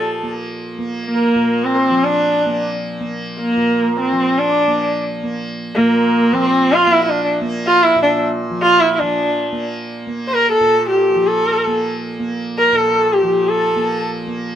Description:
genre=indian classical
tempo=157 BPM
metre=3/4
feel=straight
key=Bb raga yaman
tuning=A4 = 444 Hz
part: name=warm sarangi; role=melody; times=0.0-14.0 s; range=Bb3 to C5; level=-14 LUFS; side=equal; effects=none
part: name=hand-pumped harmonium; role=second line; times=0.0-9.0, 13.6-14.1 s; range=Bb4 to A5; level=-24 LUFS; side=right 4 dB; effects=none
part: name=tanpura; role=drone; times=0.0-14.6 s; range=Bb2 to Bb3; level=-23 LUFS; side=equal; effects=none
room=moderate small room reverb, RT60 0.6 s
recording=minimal, uncompressed stereo recording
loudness=-14 LUFS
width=side -10 dB against mid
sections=0.0-9.0 A section; 9.0-14.6 B section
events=speeding up 0.0-14.6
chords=none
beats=0.07 0.47 | 0.86 1.26 1.65 | 2.04 2.44 2.83 | 3.22 3.61 4.00 | 4.39 4.78 5.17 | 5.55 5.94 6.33 | 6.71 7.09 7.48 | 7.86 8.24 8.62 | 9.00 9.38 9.76 | 10.13 10.51 10.89 | 11.26 11.63 12.01 | 12.38 12.75 13.12 | 13.49 13.86 14.23

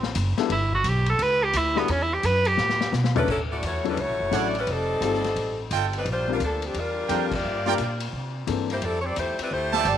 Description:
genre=jazz, big band swing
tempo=173 BPM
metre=4/4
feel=swing 65% on 8ths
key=unclear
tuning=A4 = 440 Hz
part: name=clear tenor saxophone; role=melody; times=0.0-2.9 s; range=B3 to B4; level=-23 LUFS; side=right 2 dB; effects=none
part: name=upright bass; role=bass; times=0.0-10.0 s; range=F1 to C3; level=-28 LUFS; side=equal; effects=none
part: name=vintage drum kit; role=drums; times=0.0-10.0 s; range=crash cymbal, hi-hat, kick drum, ride cymbal, snare drum, toms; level=-32 LUFS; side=left 6 dB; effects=none
part: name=clear baby grand piano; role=accompaniment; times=0.4-8.7 s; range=E3 to Bb4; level=-29 LUFS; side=left 10 dB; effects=none
part: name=bright saxophone section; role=melody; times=3.2-10.0 s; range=F3 to D5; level=-27 LUFS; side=left 1 dB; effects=none
part: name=brilliant trumpet section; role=stabs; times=4.3-10.0 s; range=D4 to A5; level=-27 LUFS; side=right 12 dB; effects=slapback echo
room=light reverb, small room ambience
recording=1960s-style stereo with parts hard left and right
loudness=-22 LUFS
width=side -10 dB against mid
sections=0.0-3.3 A section; 3.3-10.0 B section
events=tenor saxophone solo 0.0-3.3; drum fill 2.6-3.3; band accent 7.3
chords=0.0 D7; 0.5 G6; 1.9 Esus2; 2.6 A13; 3.3 Dmaj9; 4.7 F9; 6.1 Bb69; 7.4 Gm7; 8.1 C13; 8.8 Fmaj13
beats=0.16 | 0.51 0.86 1.20 1.55 | 1.89 2.24 2.59 2.93 | 3.28 3.62 3.97 4.32 | 4.67 5.01 5.36 5.71 | 6.05 6.40 6.74 7.09 | 7.44 7.78 8.13 8.47 | 8.82 9.16 9.51 9.86

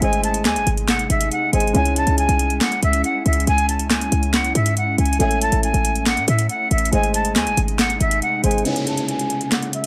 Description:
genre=hip hop, trap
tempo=139 BPM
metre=4/4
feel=half-time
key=C# harmonic minor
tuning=A4 = 439 Hz
part: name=jazz flute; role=melody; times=0.0-9.9 s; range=E5 to A5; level=-24 LUFS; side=equal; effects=low-pass filter, delay
part: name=felt-muted upright piano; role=accompaniment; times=0.0-9.9 s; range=C#3 to E5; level=-28 LUFS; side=equal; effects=low-pass filter
part: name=glassy FM pad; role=sustained chords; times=0.0-9.9 s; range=B#2 to E4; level=-31 LUFS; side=equal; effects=ensemble chorus, built-in reverb, low-pass filter
part: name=short 808-style bass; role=bass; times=0.0-8.6 s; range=G#1 to A2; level=-23 LUFS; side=equal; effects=none
part: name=booming analog drum machine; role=drums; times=0.0-9.9 s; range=handclaps, hi-hat, snare drum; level=-24 LUFS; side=equal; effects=overdrive
part: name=downlifter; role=sound effects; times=8.7-9.9 s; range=none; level=-32 LUFS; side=equal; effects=none
room=light reverb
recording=none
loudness=-19 LUFS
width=mono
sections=0.0-8.7 A section; 8.7-9.9 B section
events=filter sweep 8.7-9.9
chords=0.0 G#; 1.7 C#m; 5.2 A; 6.9 G#; 8.7 C#m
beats=| 0.02 0.45 0.88 1.31 | 1.75 2.18 2.61 3.04 | 3.47 3.90 4.34 4.77 | 5.20 5.63 6.06 6.50 | 6.93 7.36 7.79 8.22 | 8.65 9.09 9.52

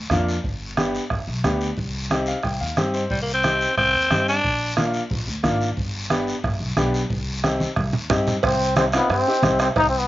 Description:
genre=latin, cumbia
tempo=180 BPM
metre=4/4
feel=straight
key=C minor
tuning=A4 = 441 Hz
part: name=upright bass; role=bass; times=0.0-10.1 s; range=G1 to G2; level=-27 LUFS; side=equal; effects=none
part: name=clear upright piano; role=accompaniment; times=0.1-9.7 s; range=Bb3 to G5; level=-24 LUFS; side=left 1 dB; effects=slapback echo
part: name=bombo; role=percussion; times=0.1-9.9 s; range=none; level=-26 LUFS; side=right 3 dB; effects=none
part: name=congas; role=percussion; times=0.1-9.6 s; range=none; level=-25 LUFS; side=right 1 dB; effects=none
part: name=guiro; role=percussion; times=0.1-10.1 s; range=none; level=-33 LUFS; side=left 2 dB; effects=none
part: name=raspy tenor saxophone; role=melody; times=3.1-4.7 s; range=G3 to D4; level=-19 LUFS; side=left 1 dB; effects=none
part: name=bright trombone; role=second line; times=8.4-10.1 s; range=B3 to Eb4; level=-20 LUFS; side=left 1 dB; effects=none
part: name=cowbell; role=percussion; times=8.4-9.9 s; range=none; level=-27 LUFS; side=right 6 dB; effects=none
room=little or no reverb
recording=recorded outdoors, with no room sound, nothing above 7.5 kHz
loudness=-19 LUFS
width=side -15 dB against mid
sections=0.0-8.4 A section; 8.4-10.1 B section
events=upright piano fill 2.1-3.1; drum fill 7.6-8.4; trombone solo 8.4-10.1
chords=0.4 G; 1.8 Cm; 4.4 Bb; 5.8 G; 7.1 Cm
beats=0.11 | 0.45 0.78 1.11 1.45 | 1.78 2.11 2.44 2.78 | 3.11 3.44 3.78 4.11 | 4.44 4.78 5.11 5.44 | 5.78 6.11 6.44 6.77 | 7.11 7.44 7.77 8.10 | 8.44 8.77 9.10 9.43 | 9.76

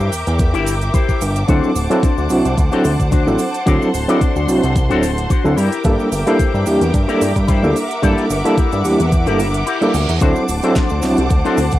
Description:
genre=nu-disco, nu disco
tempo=110 BPM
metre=4/4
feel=swing 54% on 16ths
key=D mixolydian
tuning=A4 = 441 Hz
part: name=rich studio string section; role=sustained chords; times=0.0-11.8 s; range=Bb4 to D6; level=-23 LUFS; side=right 1 dB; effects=sidechain pumping, cassette tape
part: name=electric guitar with an envelope filter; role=riff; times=0.0-11.7 s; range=D4 to D5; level=-23 LUFS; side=left 8 dB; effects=analog chorus, cassette tape, tape echo
part: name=fat analog bass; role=bass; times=0.0-11.8 s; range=D1 to G2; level=-18 LUFS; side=equal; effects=none
part: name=cabasa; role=percussion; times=0.0-11.8 s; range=none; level=-33 LUFS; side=right 12 dB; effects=none
part: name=pop drum kit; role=drums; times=0.1-11.8 s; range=hi-hat, snare drum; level=-32 LUFS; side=equal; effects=studio reverb
part: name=electronic kick drum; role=drums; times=0.4-11.8 s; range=none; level=-16 LUFS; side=equal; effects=studio reverb
part: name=overdriven tine electric piano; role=accompaniment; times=1.5-11.6 s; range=F#3 to A4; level=-17 LUFS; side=right 1 dB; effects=medium tremolo, cassette tape, tape echo
part: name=reverse cymbal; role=sound effects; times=9.5-10.2 s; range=none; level=-29 LUFS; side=right 5 dB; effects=none
room=light reverb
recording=home recording on cassette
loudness=-13 LUFS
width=side -14 dB against mid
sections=0.0-11.8 A section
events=reverse cymbal 9.5-10.2; kick drops out 9.7-10.2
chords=0.0 Gm6; 1.5 D7; 5.6 Gm6; 10.2 D7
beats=0.40 0.94 | 1.49 2.03 2.58 3.12 | 3.67 4.21 4.76 5.30 | 5.85 6.39 6.94 7.49 | 8.03 8.58 9.12 9.67 | 10.21 10.76 11.30

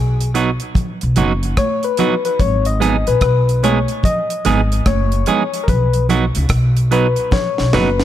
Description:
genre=roots reggae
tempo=73 BPM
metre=4/4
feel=swing 64% on 16ths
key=unclear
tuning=A4 = 440 Hz
part: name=percussive organ stab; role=stabs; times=0.0-8.0 s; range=G#4 to D#5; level=-19 LUFS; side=left 6 dB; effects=chorus
part: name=upright bass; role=bass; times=0.0-8.0 s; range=F#1 to C#2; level=-17 LUFS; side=equal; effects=none
part: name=deep reggae drum kit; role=drums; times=0.2-8.0 s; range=hi-hat, kick drum, rim click, snare drum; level=-20 LUFS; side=equal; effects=none
part: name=clean electric guitar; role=accompaniment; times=0.3-7.9 s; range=F#3 to G#4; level=-20 LUFS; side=right 7 dB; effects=tape echo
part: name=congas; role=percussion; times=0.7-8.0 s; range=none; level=-25 LUFS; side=right 4 dB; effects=none
room=small room ambience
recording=none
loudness=-14 LUFS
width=side -12 dB against mid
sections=0.0-8.0 A section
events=synth stab solo 0.0-8.0; drum fill 7.3-8.0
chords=0.0 B; 2.4 G#m; 5.7 B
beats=0.76 1.58 | 2.40 3.22 4.04 4.86 | 5.68 6.50 7.32

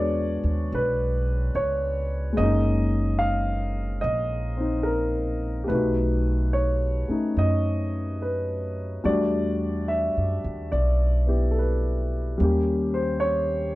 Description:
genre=jazz ballad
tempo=72 BPM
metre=4/4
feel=swing 66% on 8ths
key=unclear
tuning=A4 = 440 Hz
part: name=warm baby grand piano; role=accompaniment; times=0.0-13.8 s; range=G3 to F5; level=-25 LUFS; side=left 1 dB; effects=none
part: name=upright bass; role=bass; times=0.0-13.7 s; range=F#1 to F#2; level=-25 LUFS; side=equal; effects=none
room=little or no reverb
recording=dry, close 1970s-style studio recording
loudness=-22 LUFS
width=side -18 dB against mid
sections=0.0-13.8 A section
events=none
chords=0.0 E9; 2.4 F#69; 5.7 B7b13; 9.0 Em11; 12.4 Eb7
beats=0.72 1.54 | 2.37 3.20 4.03 4.87 | 5.70 6.53 7.37 8.21 | 9.04 9.88 10.71 11.55 | 12.39 13.22

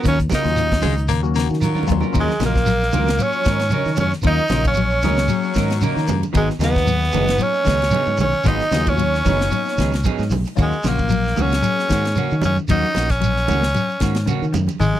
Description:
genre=afrobeat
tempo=114 BPM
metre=4/4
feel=swing 54% on 16ths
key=Eb minor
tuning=A4 = 441 Hz
part: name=raspy tenor saxophone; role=melody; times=0.0-15.0 s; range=Ab3 to Eb4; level=-22 LUFS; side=equal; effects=none
part: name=breathy alto saxophone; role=second line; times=0.0-10.3 s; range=Db4 to Eb5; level=-26 LUFS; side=right 6 dB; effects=none
part: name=bell-like tine electric piano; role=accompaniment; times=0.0-11.9 s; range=Gb3 to Ab4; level=-27 LUFS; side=left 15 dB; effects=phaser
part: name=clean electric guitar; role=stabs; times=0.0-14.7 s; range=Gb3 to Bb4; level=-28 LUFS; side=right 10 dB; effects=none
part: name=fingered electric bass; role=bass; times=0.0-14.9 s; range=Gb1 to Eb3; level=-21 LUFS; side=equal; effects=none
part: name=shekere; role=percussion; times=0.0-15.0 s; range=none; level=-27 LUFS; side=right 2 dB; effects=none
part: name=clean electric guitar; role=arpeggios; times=0.1-15.0 s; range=Db3 to Gb3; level=-25 LUFS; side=left 7 dB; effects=analog chorus
part: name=tight funk drum kit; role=drums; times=0.1-14.8 s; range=hi-hat, kick drum, ride cymbal, snare drum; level=-24 LUFS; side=equal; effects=none
part: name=congas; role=percussion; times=0.3-15.0 s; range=none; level=-26 LUFS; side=right 6 dB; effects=none
part: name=raspy baritone saxophone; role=second line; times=0.8-2.1, 5.3-6.2 s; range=Gb3 to Bb3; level=-26 LUFS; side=left 11 dB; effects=none
room=little or no reverb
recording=dry, close 1970s-style studio recording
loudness=-16 LUFS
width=side -12 dB against mid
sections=0.0-2.1 A section; 2.1-15.0 B section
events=drum fill 1.8-2.1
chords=0.0 Ebm9; 2.1 Ebm7; 6.4 Abm7; 10.6 Ebm7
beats=| 0.04 0.56 1.09 1.62 | 2.15 2.67 3.20 3.73 | 4.25 4.78 5.31 5.83 | 6.36 6.89 7.41 7.94 | 8.47 8.99 9.52 10.05 | 10.58 11.11 11.63 12.16 | 12.69 13.22 13.75 14.27 | 14.80

